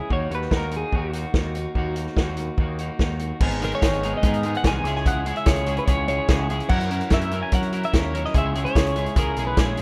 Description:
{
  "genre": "indie rock",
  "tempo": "146 BPM",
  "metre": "4/4",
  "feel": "straight",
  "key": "C# dorian",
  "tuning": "A4 = 440 Hz",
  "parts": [
    { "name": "twelve-string electric guitar", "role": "melody", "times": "0.0-9.8 s", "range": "F#4 to G#5", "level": "-30 LUFS", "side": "equal", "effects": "harmonic tremolo, slapback echo" },
    { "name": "biting overdriven guitar", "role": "riff", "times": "0.0-9.8 s", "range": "G#2 to A#4", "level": "-31 LUFS", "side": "equal", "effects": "none" },
    { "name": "twelve-string electric guitar", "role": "riff", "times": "0.1-9.8 s", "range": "D#3 to A#4", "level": "-37 LUFS", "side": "equal", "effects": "analog chorus, slapback echo" },
    { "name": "growling picked electric bass", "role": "bass", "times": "0.1-9.8 s", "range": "G#1 to F#3", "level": "-30 LUFS", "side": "equal", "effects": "overdrive" },
    { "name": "vintage drum kit", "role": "drums", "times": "0.1-9.8 s", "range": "crash cymbal, hi-hat, kick drum, snare drum", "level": "-25 LUFS", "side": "equal", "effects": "none" }
  ],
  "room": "light reverb",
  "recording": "rough home demo mix",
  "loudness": "-23 LUFS",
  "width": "mono",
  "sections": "0.0-3.4 A section; 3.4-9.8 B section",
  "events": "none",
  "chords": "0.1 D#m; 3.4 G#madd9; 4.9 C#m; 6.7 F#7; 8.3 C#m"
}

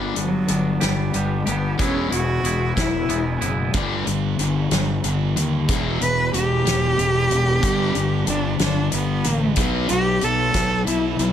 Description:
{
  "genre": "quiet-loud alternative rock",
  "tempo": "62 BPM (dotted quarters)",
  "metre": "6/8",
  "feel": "straight",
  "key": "unclear",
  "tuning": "A4 = 440 Hz",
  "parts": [
    { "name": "twangy electric guitar", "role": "arpeggios", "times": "0.0-3.7 s", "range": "E2 to G4", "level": "-28 LUFS", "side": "right 6 dB", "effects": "wide subtle chorus" },
    { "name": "fuzz guitar", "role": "riff", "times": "0.0-11.3 s", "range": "E2 to B3", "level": "-25 LUFS", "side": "left 7 dB", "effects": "distortion" },
    { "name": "fuzz fingered electric bass", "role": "bass", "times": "0.0-11.3 s", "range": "E1 to D#2", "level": "-25 LUFS", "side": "right 1 dB", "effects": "overdrive" },
    { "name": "dark cello", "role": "melody", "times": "0.2-11.2 s", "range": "F#3 to B4", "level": "-23 LUFS", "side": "equal", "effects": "none" },
    { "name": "loose indie drum kit", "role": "drums", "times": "0.2-11.3 s", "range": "hi-hat, kick drum, snare drum", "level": "-25 LUFS", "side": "equal", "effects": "none" },
    { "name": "thick fuzz guitar", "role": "riff", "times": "3.7-11.3 s", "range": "E2 to B3", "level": "-26 LUFS", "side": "right 9 dB", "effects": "distortion" }
  ],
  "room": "light reverb",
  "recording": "none",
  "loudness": "-18 LUFS",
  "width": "side -9 dB against mid",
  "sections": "0.0-11.3 A section",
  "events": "cello solo 0.0-11.3",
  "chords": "0.0 G; 1.8 E; 3.7 G5; 5.7 E5; 7.6 G; 9.6 B5"
}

